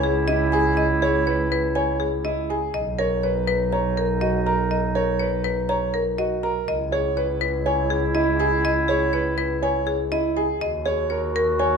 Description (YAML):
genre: classical, minimalist pattern music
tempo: 122 BPM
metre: 4/4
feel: straight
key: C# dorian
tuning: A4 = 440 Hz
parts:
  - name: marimba with medium hard mallets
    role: melody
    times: 0.0-11.8 s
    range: G#4 to A#5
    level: -24 LUFS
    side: left 6 dB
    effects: none
  - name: clear clarinet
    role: second line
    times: 0.0-11.8 s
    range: D#4 to F#4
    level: -27 LUFS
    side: right 2 dB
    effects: none
  - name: warm grand piano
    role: arpeggios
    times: 0.0-11.8 s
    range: E4 to C#5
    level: -26 LUFS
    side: right 5 dB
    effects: none
  - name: rich double bass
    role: bass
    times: 0.0-11.8 s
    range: B1 to D#2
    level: -26 LUFS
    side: right 2 dB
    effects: none
room: light reverb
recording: none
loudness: -20 LUFS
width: side -6 dB against mid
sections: 0.0-11.8 A section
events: none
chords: 0.0 C#m; 2.7 Bmaj7; 6.7 C#m7; 10.6 D#m7